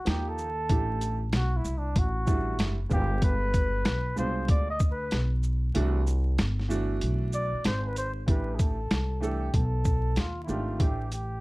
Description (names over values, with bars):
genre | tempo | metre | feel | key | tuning
hip hop, jazz-hop | 95 BPM | 4/4 | swing 64% on 16ths | unclear | A4 = 440 Hz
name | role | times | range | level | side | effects
breathy flugelhorn | melody | 0.0-11.4 s | D4 to D#5 | -33 LUFS | equal | slapback echo, plate reverb
warm upright piano | accompaniment | 0.1-11.1 s | B2 to A4 | -33 LUFS | right 2 dB | none
upright bass | bass | 0.1-11.4 s | F#1 to D#2 | -28 LUFS | equal | none
boom bap sampler-style drum kit | drums | 0.1-11.3 s | hi-hat, kick drum, shaker, snare drum | -27 LUFS | equal | none
room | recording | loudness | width
little or no reverb | dark, warm production, vinyl crackle | -25 LUFS | side -22 dB against mid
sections
0.0-8.3 A section; 8.3-11.4 B section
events
flugelhorn solo 0.0-8.3; kick muted 5.8-8.3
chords
0.1 D#add9; 0.7 D9sus4/A; 2.9 G7b9; 5.8 Cmaj9; 8.3 Am9; 10.2 D#add9; 10.8 Dsus4/A